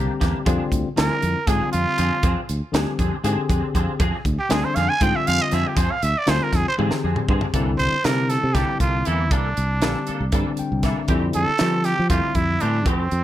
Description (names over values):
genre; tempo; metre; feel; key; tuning
electric jazz fusion; 238 BPM (eighths); 7/8; straight; unclear; A4 = 440 Hz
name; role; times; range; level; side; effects
tine electric piano; accompaniment; 0.0-12.9 s; D3 to Bb5; -26 LUFS; left 4 dB; none
twangy electric guitar; stabs; 0.0-13.0 s; E3 to A4; -30 LUFS; equal; ensemble chorus
fingered electric bass; bass; 0.0-13.2 s; Bb1 to F3; -23 LUFS; equal; none
crisp fusion drum kit; drums; 0.2-13.2 s; hi-hat, kick drum, snare drum, toms; -24 LUFS; right 1 dB; none
trumpet with straight mute; melody; 1.0-13.2 s; C4 to Ab5; -23 LUFS; right 3 dB; none
room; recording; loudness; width
light reverb, small room reverb; none; -18 LUFS; side -12 dB against mid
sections
0.0-7.5 A section; 7.5-13.2 B section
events
tine electric piano fill 0.0-0.5, 10.3-11.1; muted trumpet solo 0.0-7.5; drum fill 6.8-7.5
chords
0.5 Fm6; 7.5 C13; 11.1 Fmaj9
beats
0.22 | 0.48 0.73 0.98 1.23 1.49 1.74 1.99 | 2.24 2.49 2.75 3.00 3.25 3.50 3.76 | 4.01 4.26 4.51 4.76 5.02 5.27 5.52 | 5.77 6.03 6.28 6.53 6.79 7.04 7.29 | 7.54 7.80 8.05 8.30 8.55 8.81 9.06 | 9.31 9.57 9.82 10.07 10.33 10.58 10.83 | 11.09 11.34 11.59 11.85 12.10 12.35 12.61 | 12.86 13.11